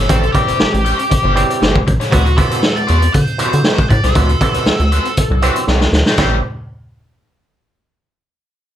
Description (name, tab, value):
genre	funk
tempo	118 BPM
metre	4/4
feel	straight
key	unclear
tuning	A4 = 436 Hz
part	nasal lead guitar with a parked wah	melody	0.0-5.6 s	F#4 to D5	-20 LUFS	equal	overdrive
part	raw garage guitar	accompaniment	0.0-6.4 s	C4 to C#5	-22 LUFS	left 3 dB	wah, overdrive
part	rubbery square bass	bass	0.0-6.4 s	G1 to D3	-15 LUFS	equal	none
part	auto-wah clav	stabs	0.1-6.4 s	B2 to B#3	-21 LUFS	right 4 dB	none
part	raw garage drum kit	drums	0.1-6.3 s	crash cymbal, hi-hat, kick drum, snare drum	-16 LUFS	equal	none
room	light reverb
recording	none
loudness	-11 LUFS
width	side -11 dB against mid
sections	0.0-6.2 A section; 6.2-8.2 B section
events	drum fill 5.7-6.2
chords	0.0 A7#9; 2.1 D13; 6.2 A7#9